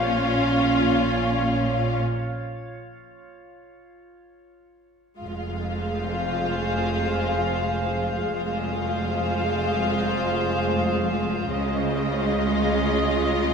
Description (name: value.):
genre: cinematic.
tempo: free time.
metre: none.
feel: none.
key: F minor from 5.2 s.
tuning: A4 = 440 Hz.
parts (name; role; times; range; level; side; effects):
dark symphonic violin section; melody; 0.0-13.5 s; Eb5 to F5; -30 LUFS; left 3 dB; none.
warm symphonic violin section; second line; 0.0-13.5 s; F4; -30 LUFS; left 3 dB; none.
rich symphonic viola section; accompaniment; 0.0-13.5 s; Ab3 to Db4; -28 LUFS; right 2 dB; none.
drifting glass-harmonics texture; sustained chords; 0.0-13.5 s; F4 to F5; -30 LUFS; left 1 dB; chorus, built-in reverb.
rich symphonic double bass section; bass; 0.0-13.5 s; F1 to Db2; -30 LUFS; right 2 dB; none.
warm studio cello section; bass; 0.0-13.5 s; F2 to Db3; -30 LUFS; right 2 dB; none.
room: wet scoring stage reverb, RT60 1.9 s.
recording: none.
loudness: -22 LUFS.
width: side -6 dB against mid.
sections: 0.0-5.2 A section; 5.2-13.5 B section.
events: break 2.0-5.2.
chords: 0.0 Bbm; 5.2 Fm; 11.5 Dbadd9.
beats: free time.